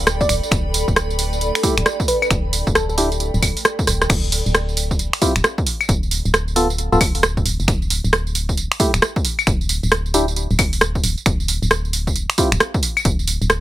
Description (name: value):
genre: UK garage, two-step garage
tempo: 134 BPM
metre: 4/4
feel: swing 63% on 16ths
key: unclear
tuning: A4 = 440 Hz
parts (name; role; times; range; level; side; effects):
- organ-like FM bass; bass; 0.0-13.6 s; D1 to F1; -22 LUFS; equal; sidechain pumping
- granular cloud pad; texture; 0.0-4.1 s; A4 to B5; -27 LUFS; right 1 dB; built-in reverb, sidechain pumping
- punchy analog drum machine; drums; 0.1-13.6 s; claves, crash cymbal, finger snaps, hi-hat, rim click, tambourine; -19 LUFS; right 1 dB; none
- bell-like FM electric piano; melody; 0.2-2.9 s; A4 to D5; -23 LUFS; equal; chorus, digital delay
- electronic kick drum; drums; 0.2-13.2 s; none; -21 LUFS; equal; none
- percussive organ stab; stabs; 1.6-12.5 s; A3 to A4; -20 LUFS; equal; chorus, digital delay
room: light reverb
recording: none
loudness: -16 LUFS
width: side -14 dB against mid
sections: 0.0-4.1 A section; 4.1-13.6 B section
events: filter sweep on synth stab 0.0-4.1; drum fill 3.9; drop 4.1-13.6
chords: 0.3 G69/D; 4.1 Dm11; 5.9 Dm6; 7.5 Fmaj9/D (rootless); 9.2 N.C.; 11.3 Dm11; 13.1 N.C.